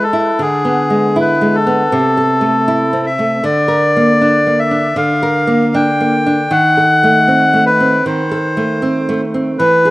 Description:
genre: romantic duo for bandoneon and classical guitar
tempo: 78 BPM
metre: 4/4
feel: rubato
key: unclear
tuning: A4 = 443 Hz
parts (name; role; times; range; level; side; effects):
- bandoneon; melody; 0.0-9.9 s; G#4 to G5; -13 LUFS; left 1 dB; analog delay
- nylon-string guitar; accompaniment; 0.0-9.9 s; C3 to Bb4; -14 LUFS; right 1 dB; none
room: light reverb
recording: rough home demo mix, vinyl crackle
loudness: -11 LUFS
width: side -19 dB against mid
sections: 0.0-9.9 A section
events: none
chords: 0.4 E7/D; 1.9 Am/C; 3.4 Bb/D; 6.5 D#dim7

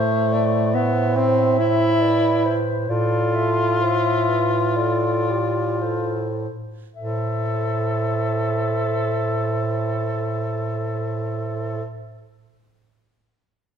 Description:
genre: classical, lyrical piece for single-reed quartet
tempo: 51-76 BPM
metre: 4/4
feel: rubato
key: A minor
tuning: A4 = 440 Hz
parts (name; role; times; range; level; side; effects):
- mellow clarinet; melody; 0.0-11.8 s; C5 to E5; -28 LUFS; left 6 dB; none
- warm alto saxophone; second line; 0.0-11.9 s; G4 to C5; -28 LUFS; right 8 dB; none
- mellow tenor saxophone; accompaniment; 0.0-11.8 s; A3 to A4; -23 LUFS; left 2 dB; none
- clear bass clarinet; bass; 0.0-11.8 s; A2; -24 LUFS; right 3 dB; none
room: moderate recital hall reverb, RT60 1.5 s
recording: none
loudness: -19 LUFS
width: side -7 dB against mid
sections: 0.0-7.0 A section; 7.0-11.4 B section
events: slowing down 0.0-7.0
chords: 0.0 Am; 2.9 Dm/A; 7.0 Am

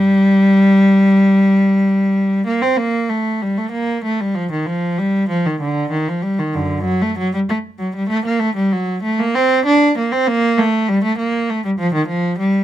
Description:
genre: classical, baroque-style suite movement for unaccompanied cello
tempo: 64 BPM (dotted quarters)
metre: 12/8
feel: rubato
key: G minor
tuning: A4 = 438 Hz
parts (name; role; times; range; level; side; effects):
- rich cello; solo; 0.0-12.6 s; F#2 to D4; -14 LUFS; equal; none
room: light reverb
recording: close, detailed microphones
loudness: -14 LUFS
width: side -12 dB against mid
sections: 0.0-2.8 A section; 2.8-12.6 B section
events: none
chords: none

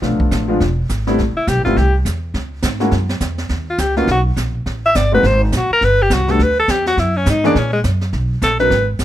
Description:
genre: jazz, small-group swing and bop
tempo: 207 BPM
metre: 4/4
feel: swing 61% on 8ths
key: unclear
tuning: A4 = 442 Hz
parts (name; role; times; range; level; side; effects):
- warm grand piano; accompaniment; 0.0-8.7 s; E3 to A#4; -18 LUFS; left 1 dB; none
- upright bass; bass; 0.0-9.0 s; E1 to A#2; -18 LUFS; equal; none
- jazz brush drum kit; drums; 0.0-9.0 s; brushed snare drum, hi-hat, kick drum, snare drum; -24 LUFS; right 2 dB; none
- bright alto saxophone; melody; 1.4-8.9 s; G#3 to E5; -15 LUFS; left 1 dB; none
room: light reverb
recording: close, detailed microphones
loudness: -14 LUFS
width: side -12 dB against mid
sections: 0.0-8.1 A section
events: alto saxophone solo 0.0-9.0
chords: 0.0 Bm7b5; 0.6 E; 1.2 Am7; 2.3 C#m; 2.9 Esus2; 3.5 Bmaj9; 4.7 Am7; 5.2 Absus2; 5.8 Gmaj7; 7.0 F#add9; 8.1 Bmaj7(no3)

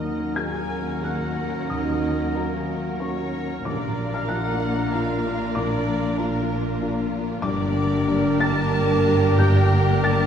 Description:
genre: cinematic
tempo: 94 BPM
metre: 3/4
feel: uneven beats, rubato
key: unclear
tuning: A4 = 436 Hz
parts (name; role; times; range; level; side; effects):
- rich symphonic violin section; melody; 0.0-10.3 s; Bb4 to A5; -35 LUFS; left 4 dB; none
- mellow large flute ensemble; second line; 0.0-10.3 s; Gb5 to D6; -36 LUFS; left 1 dB; none
- rich symphonic violin section; second line; 0.0-10.3 s; F4 to Bb4; -32 LUFS; equal; none
- warm oboe; second line; 0.0-10.3 s; Bb4; -34 LUFS; equal; none
- clear symphonic viola section; accompaniment; 0.0-10.3 s; Bb3 to D4; -30 LUFS; right 1 dB; none
- felt-muted upright piano; accompaniment; 0.0-10.3 s; G1 to A6; -27 LUFS; left 1 dB; none
- dark French horn section; sustained chords; 0.0-10.3 s; Bb3 to Bb4; -28 LUFS; equal; none
- concert harp; arpeggios; 0.0-10.3 s; G2 to Bb4; -30 LUFS; left 3 dB; none
- warm symphonic cello section; bass; 0.0-10.3 s; Eb2 to Bb2; -28 LUFS; right 2 dB; none
- warm symphonic double bass section; bass; 0.0-10.3 s; G1 to Eb2; -31 LUFS; right 3 dB; none
- timpani; percussion; 0.0-4.6 s; Bb2 to Eb3; -37 LUFS; left 1 dB; none
room: wet scoring stage reverb, RT60 1.6 s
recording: heard from further back in the room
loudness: -20 LUFS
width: side -8 dB against mid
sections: 0.0-10.3 A section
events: none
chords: 0.0 Ebm7; 3.7 Bb; 7.4 Gm

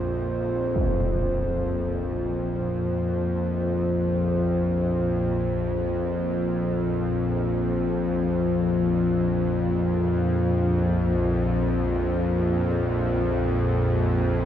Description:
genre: dark ambient drone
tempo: free time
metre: none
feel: none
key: unclear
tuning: A4 = 440 Hz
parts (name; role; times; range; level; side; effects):
- dark analog pad; sustained chords; 0.0-14.4 s; Bb3 to C5; -28 LUFS; right 1 dB; chorus
- bowed-like drone; drone; 0.0-14.4 s; Bb1 to F2; -23 LUFS; left 1 dB; built-in reverb
- impact; percussion; 0.8-1.0 s; none; -31 LUFS; equal; low-pass filter on sfx
room: wet cathedral reverb, RT60 5.2 s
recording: in a vast, echoing space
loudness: -22 LUFS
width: side -10 dB against mid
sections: 0.8-14.4 A section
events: none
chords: 0.0 Bbsus2

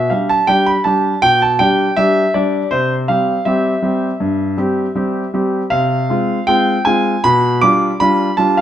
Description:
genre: classical-period piano sonatina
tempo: 80 BPM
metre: 4/4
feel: rubato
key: C major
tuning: A4 = 436 Hz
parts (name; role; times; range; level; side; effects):
- warm concert grand piano; solo; 0.0-8.6 s; G2 to D6; -13 LUFS; equal; none
room: light reverb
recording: close, detailed microphones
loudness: -13 LUFS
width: side -10 dB against mid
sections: 0.0-8.6 A section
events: none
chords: 0.0 G/B; 2.7 C; 5.7 Fm/C; 7.2 G7/B

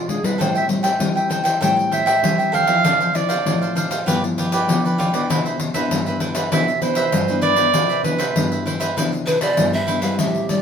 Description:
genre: samba and choro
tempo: 98 BPM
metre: 4/4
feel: straight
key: C major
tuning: A4 = 438 Hz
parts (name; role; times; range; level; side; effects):
- warm clarinet; second line; 0.0-10.6 s; F4 to G5; -20 LUFS; right 4 dB; none
- nylon-string guitar; accompaniment; 0.0-10.6 s; G2 to F4; -23 LUFS; left 2 dB; none
- pandeiro; percussion; 0.1-10.6 s; none; -23 LUFS; left 2 dB; none
- cavaquinho; accompaniment; 0.4-10.2 s; D4 to G5; -23 LUFS; right 1 dB; none
- breathy mellow pan flute; melody; 9.3-10.6 s; B4 to F5; -21 LUFS; right 1 dB; none
room: wet studio reverb, RT60 0.6 s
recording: band playing live in one room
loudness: -16 LUFS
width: side -7 dB against mid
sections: 0.0-10.2 A section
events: clarinet solo 0.0-10.2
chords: 0.4 Am7; 2.8 Dm9; 4.1 G6; 5.3 Cmaj9

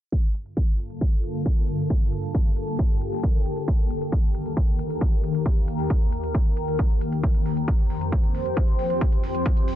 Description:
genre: uplifting trance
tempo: 135 BPM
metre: 4/4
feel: straight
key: G minor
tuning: A4 = 439 Hz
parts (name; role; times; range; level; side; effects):
- shimmering ambient pad; sustained chords; 0.8-9.8 s; Eb2 to C5; -27 LUFS; left 1 dB; chorus, built-in reverb, phaser, sidechain pumping
- electronic hi-hat; drums; 0.1-9.8 s; none; -52 LUFS; equal; overdrive
- electronic kick drum; drums; 0.1-9.5 s; none; -21 LUFS; equal; overdrive
room: little or no reverb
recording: dense, heavily limited modern master, low-pass filter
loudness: -21 LUFS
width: side -12 dB against mid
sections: 0.1-9.8 A section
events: filter sweep on ambient pad 0.1-9.8; filter sweep 0.1-9.8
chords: 0.1 Gm7; 3.7 Eb; 7.2 Fsus2

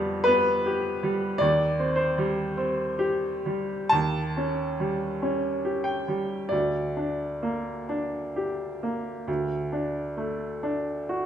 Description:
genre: classical, romantic nocturne for solo piano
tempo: 42-52 BPM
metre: 4/4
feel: rubato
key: unclear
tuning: A4 = 440 Hz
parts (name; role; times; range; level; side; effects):
- bright baby grand piano; solo; 0.0-11.3 s; D2 to A5; -25 LUFS; equal; none
room: wet recital hall reverb, RT60 1.4 s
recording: minimal, uncompressed stereo recording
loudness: -25 LUFS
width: side -9 dB against mid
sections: 0.0-11.3 A section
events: none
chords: 0.0 G7/F; 1.4 Cm/Eb; 3.9 Eb7; 6.5 Gm/D; 9.3 D5

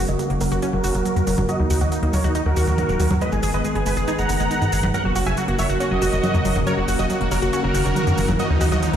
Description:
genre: uplifting trance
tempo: 139 BPM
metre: 4/4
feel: straight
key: unclear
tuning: A4 = 443 Hz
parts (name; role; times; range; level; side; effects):
- dense compressed supersaw; melody; 0.0-9.0 s; D#4 to A#5; -24 LUFS; right 1 dB; low-pass filter, tape echo
- lush unison pad; sustained chords; 0.0-9.0 s; C#3 to B3; -26 LUFS; right 1 dB; chorus
- wide unison pluck; arpeggios; 0.0-9.0 s; F#3 to B4; -26 LUFS; equal; tape echo
- tight sequencer bass; bass; 0.0-9.0 s; D#1 to G#2; -22 LUFS; equal; none
- electronic hi-hat, shaker and congas; drums; 0.1-9.0 s; none; -28 LUFS; equal; none
- riser; sound effects; 6.5-9.0 s; none; -31 LUFS; right 5 dB; none
room: light reverb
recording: played on a big sound system in a bare room, large studio reverb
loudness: -18 LUFS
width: side -9 dB against mid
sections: 0.0-9.0 A section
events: build-up 0.0-9.0; filter sweep on supersaw synth 0.0-9.0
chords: 0.0 F#; 1.5 D#m; 3.2 G#m; 4.9 F#; 8.4 D#m

